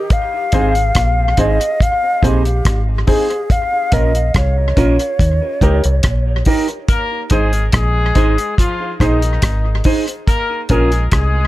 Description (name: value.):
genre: roots reggae.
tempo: 71 BPM.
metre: 4/4.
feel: straight.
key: unclear.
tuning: A4 = 444 Hz.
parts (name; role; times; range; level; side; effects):
bright bass ocarina; melody; 0.0-6.4 s; G4 to F5; -18 LUFS; left 1 dB; tape echo, plate reverb.
cloth-damped thuddy drum kit; drums; 0.1-11.3 s; hi-hat, kick drum, rim click; -16 LUFS; equal; tape echo.
mellow electric guitar; accompaniment; 0.5-10.9 s; C4 to C5; -23 LUFS; right 4 dB; phaser, tape echo, plate reverb.
dark upright piano; stabs; 0.5-10.9 s; Db4 to C5; -22 LUFS; left 3 dB; plate reverb.
deep dub fingered electric bass; bass; 0.5-11.5 s; Ab1 to Eb2; -16 LUFS; equal; none.
warm horn section; second line; 6.9-11.5 s; Eb3 to Bb4; -21 LUFS; left 3 dB; tape echo, plate reverb.
room: light reverb.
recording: none.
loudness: -13 LUFS.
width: side -16 dB against mid.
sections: 0.0-11.5 A section.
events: none.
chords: 0.1 Ab; 3.5 Bbm; 5.2 Eb; 6.9 Ab; 10.3 Bbm.